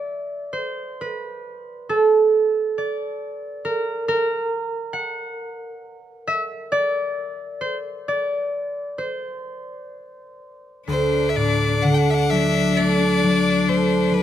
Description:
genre	celtic folk, Celtic slow air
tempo	62-70 BPM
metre	4/4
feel	rubato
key	D mixolydian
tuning	A4 = 435 Hz
part	concert harp	accompaniment	0.0-14.2 s	D2 to F#5	-21 LUFS	right 2 dB	none
part	clear fiddle	melody	10.9-14.2 s	B4 to G5	-23 LUFS	left 2 dB	none
part	clear cello	second line	10.9-14.2 s	D4	-24 LUFS	left 10 dB	none
room	light reverb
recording	close, detailed microphones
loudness	-19 LUFS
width	side -10 dB against mid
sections	0.0-10.9 A section; 10.9-14.2 B section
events	harp solo 0.0-10.9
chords	0.0 N.C.; 10.9 D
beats	| 0.08 0.99 1.90 2.78 | 3.66 4.52 5.39 6.28 | 7.16 8.07 8.98 9.92 | 10.88 11.83 12.77 13.69

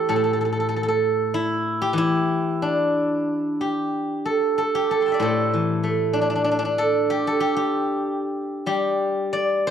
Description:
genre	chinese traditional, Chinese solo plucked strings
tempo	89-100 BPM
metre	2/4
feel	rubato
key	D shang mode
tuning	A4 = 441 Hz
part	steel-string zither	solo	0.0-9.7 s	A2 to D6	-20 LUFS	equal	none
room	moderate recital hall reverb, RT60 1.5 s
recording	dark, warm production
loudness	-20 LUFS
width	side -8 dB against mid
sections	0.0-3.9 A section; 3.9-9.7 B section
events	none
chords	none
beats	| 0.10 0.74 | 1.35 1.96 | 2.59 3.26 | 3.92 4.58 | 5.22 5.83 | 6.45 7.08 | 7.71 8.35 | 9.00 9.66

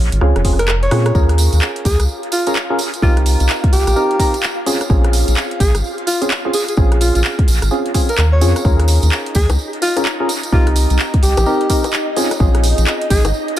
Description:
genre	UK garage, two-step garage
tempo	128 BPM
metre	4/4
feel	swing 62% on 16ths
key	Bb dorian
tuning	A4 = 440 Hz
part	percussive organ stab	stabs	0.0-13.6 s	C4 to Bb4	-21 LUFS	equal	lush chorus, tape echo
part	rubbery square bass	bass	0.0-13.3 s	F1 to Bb2	-14 LUFS	equal	sidechain pumping
part	house drum kit	drums	0.1-13.6 s	bongos, handclaps, hi-hat, rim click	-23 LUFS	equal	dub echo
part	electronic kick drum	drums	0.4-13.2 s	none	-15 LUFS	equal	none
part	mellow alto saxophone	melody	0.6-13.3 s	F4 to Db5	-21 LUFS	equal	dub echo
part	soft string machine	sustained chords	1.5-13.6 s	Eb4 to F5	-26 LUFS	equal	phaser, ensemble chorus, sidechain pumping
part	tambourine	percussion	1.2-13.6 s	none	-26 LUFS	right 4 dB	none
room	light reverb, digital ambience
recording	echo-heavy mix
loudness	-13 LUFS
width	side -12 dB against mid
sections	0.0-13.6 A section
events	drum fill 0.2-1.2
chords	0.0 Bbm9; 1.2 Eb7sus4; 3.0 Cm7; 4.7 Bbm9; 8.7 Eb7sus4; 10.5 Cm7; 12.2 Bbm9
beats	0.21 0.68 | 1.15 1.62 2.09 2.56 | 3.03 3.49 3.96 4.43 | 4.90 5.37 5.84 6.31 | 6.78 7.24 7.71 8.18 | 8.65 9.12 9.59 10.06 | 10.53 10.99 11.46 11.93 | 12.40 12.87 13.34

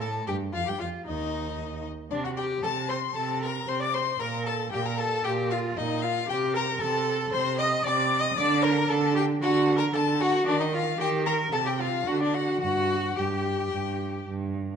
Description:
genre	quick classical-period movement for string quartet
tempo	114 BPM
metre	4/4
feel	rubato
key	G minor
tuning	A4 = 440 Hz
part	warm violin	melody	0.0-14.3 s	D5 to Eb6	-31 LUFS	left 12 dB	none
part	rich violin	second line	0.0-14.3 s	D4 to Eb5	-31 LUFS	left 4 dB	none
part	rich viola	accompaniment	0.0-14.3 s	D4 to Eb5	-30 LUFS	right 2 dB	none
part	rich cello	bass	0.0-14.8 s	Eb2 to Eb3	-29 LUFS	right 5 dB	none
room	moderate recital hall reverb, RT60 1.5 s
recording	dark, warm production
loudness	-24 LUFS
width	side -7 dB against mid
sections	0.0-14.8 A section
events	none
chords	0.0 Ebadd9; 2.1 Bbmaj7sus2/C; 4.2 Gm9/Bb; 6.3 Cm13; 8.4 D; 10.5 Ebmaj9; 11.5 Fadd9/C; 12.1 D; 12.6 N.C.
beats	| 0.01 0.54 1.08 1.60 | 2.13 2.64 3.17 3.69 | 4.21 4.73 5.25 5.77 | 6.29 6.81 7.33 7.85 | 8.37 8.89 9.42 9.95 | 10.47 10.99 11.53 12.07 | 12.62 13.18 13.73 14.28

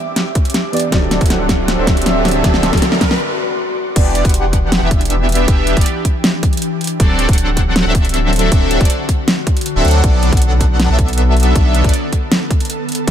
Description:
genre	future bass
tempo	158 BPM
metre	4/4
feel	half-time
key	E minor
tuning	A4 = 442 Hz
part	soft round pluck	accompaniment	0.0-3.2 s	D3 to D5	-23 LUFS	right 3 dB	wide subtle chorus, sidechain pumping, digital delay
part	ethereal airy pad	sustained chords	0.0-13.1 s	D3 to D6	-23 LUFS	left 2 dB	ensemble chorus, built-in reverb, sidechain pumping
part	riser	sound effects	0.0-3.2 s	none	-25 LUFS	equal	none
part	pop drum kit	drums	0.2-13.1 s	crash cymbal, hi-hat, snare drum	-18 LUFS	equal	overdrive
part	electronic kick drum	drums	0.4-13.1 s	none	-14 LUFS	equal	none
part	soft supersaw	riff	0.9-13.1 s	E3 to F#5	-19 LUFS	equal	phaser, sidechain pumping, low-pass filter, digital delay
part	saturated sub bass	bass	0.9-13.1 s	D1 to D2	-16 LUFS	equal	sidechain pumping
room	digital ambience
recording	none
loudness	-12 LUFS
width	side -10 dB against mid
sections	0.0-4.0 A section; 4.0-13.1 B section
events	build-up 0.0-4.0; drum fill 0.0-3.2; riser 0.0-3.2; filter sweep on supersaw synth 0.0-4.0; break 3.2-4.0; drop 4.0-13.1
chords	0.0 Em7; 0.9 D7; 4.0 Em7; 7.0 D7; 10.0 Bm7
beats	0.16 0.54 | 0.92 1.30 1.68 2.06 | 2.44 2.82 3.20 3.58 | 3.96 4.34 4.72 5.10 | 5.48 5.86 6.24 6.62 | 7.00 7.38 7.76 8.14 | 8.52 8.90 9.28 9.66 | 10.04 10.42 10.80 11.18 | 11.56 11.94 12.31 12.70 | 13.07

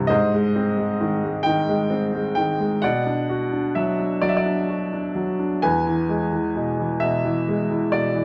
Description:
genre	classical, lyrical solo piano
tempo	44 BPM (dotted quarters)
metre	6/8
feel	rubato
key	E mixolydian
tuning	A4 = 440 Hz
part	clear upright piano	solo	0.0-8.2 s	E2 to G#5	-22 LUFS	equal	none
room	moderate plate reverb, RT60 2.8 s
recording	none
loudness	-22 LUFS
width	mono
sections	0.0-8.2 A section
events	none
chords	0.1 G#; 2.8 Bm; 5.6 E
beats	| 0.10 1.46 | 2.83 4.21 | 5.62 7.01

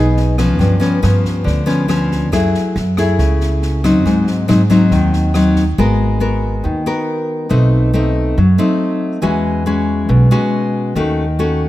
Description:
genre	bossa nova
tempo	139 BPM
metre	4/4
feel	straight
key	G# minor from 5.8 s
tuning	A4 = 441 Hz
part	nylon-string guitar	accompaniment	0.0-11.7 s	G2 to A#4	-15 LUFS	left 2 dB	none
part	upright bass	bass	0.0-11.7 s	G#1 to G#2	-16 LUFS	right 1 dB	none
part	open jazz drum kit	drums	0.2-5.6 s	kick drum, rim click, snare drum	-26 LUFS	equal	none
room	light reverb, small room ambience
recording	rough home demo mix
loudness	-12 LUFS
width	side -15 dB against mid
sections	0.0-5.8 A section; 5.8-11.7 B section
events	none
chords	0.0 Emaj7 (rootless); 0.6 G7#11; 2.3 F#m9; 4.1 G#7; 5.8 G#m9; 7.5 B7b9; 9.2 E69; 11.0 D#m7b5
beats	0.17 | 0.60 1.03 1.47 1.90 | 2.33 2.76 3.19 3.62 | 4.05 4.49 4.92 5.35 | 5.78 6.21 6.64 7.07 | 7.51 7.94 8.37 8.80 | 9.23 9.66 10.09 10.53 | 10.96 11.39

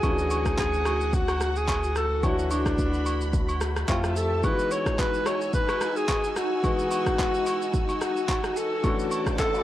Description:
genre	amapiano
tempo	109 BPM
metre	4/4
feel	swing 55% on 16ths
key	E major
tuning	A4 = 442 Hz
part	warm alto saxophone	melody	0.0-9.6 s	D4 to C#5	-27 LUFS	equal	analog delay
part	warm grand piano	accompaniment	0.0-9.6 s	E3 to C#5	-32 LUFS	left 2 dB	none
part	string machine, violas	sustained chords	0.0-9.6 s	D#4 to E6	-33 LUFS	equal	ensemble chorus, sidechain pumping
part	saturated sub bass	bass	0.0-4.4 s	D2 to F2	-29 LUFS	equal	none
part	deep house drum kit	drums	0.0-9.6 s	handclaps, kick drum, rim click, shaker	-28 LUFS	equal	none
part	agogo bells	percussion	0.0-9.3 s	none	-35 LUFS	right 1 dB	none
part	riser	sound effects	9.1-9.6 s	none	-35 LUFS	equal	none
room	little or no reverb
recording	dry, gritty hardware recording, cassette tape, lossy compression artefacts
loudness	-23 LUFS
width	side -13 dB against mid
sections	0.0-9.6 A section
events	riser 9.1-9.6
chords	0.0 Dmaj7; 3.9 Fmaj9; 4.4 Emaj9; 8.8 Dmaj7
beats	| 0.03 0.58 1.13 1.68 | 2.23 2.78 3.33 3.88 | 4.44 4.99 5.54 6.09 | 6.64 7.19 7.74 8.29 | 8.84 9.39

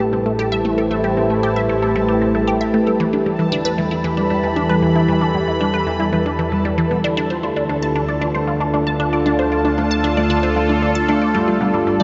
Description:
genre	ambient, sequencer-driven space music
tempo	115 BPM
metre	4/4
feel	straight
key	A minor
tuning	A4 = 440 Hz
part	sweeping resonant pad	sustained chords	0.0-12.0 s	D3 to B5	-22 LUFS	equal	chorus
part	concert harp	arpeggios	0.0-12.0 s	G3 to E5	-26 LUFS	equal	tape echo
part	resonant blip pluck	riff	0.0-12.0 s	E3 to A5	-24 LUFS	equal	phaser, tape echo
part	analog drone	bass	0.0-12.0 s	G1 to E2	-28 LUFS	equal	chorus, tube saturation
part	bubbling stepped-filter texture	texture	0.0-12.0 s	A4 to A5	-30 LUFS	equal	chorus, built-in reverb
room	wet huge ambient reverb, RT60 7.5 s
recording	nothing above 7.7 kHz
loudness	-18 LUFS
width	mono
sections	0.0-12.0 A section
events	fade-in on harp 0.0-12.0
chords	0.0 Am7; 3.0 Em; 7.2 Dm; 11.3 G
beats	0.39 | 0.91 1.43 1.96 2.48 | 3.00 3.52 4.04 4.56 | 5.09 5.61 6.13 6.65 | 7.17 7.70 8.22 8.74 | 9.26 9.78 10.30 10.82 | 11.35 11.87

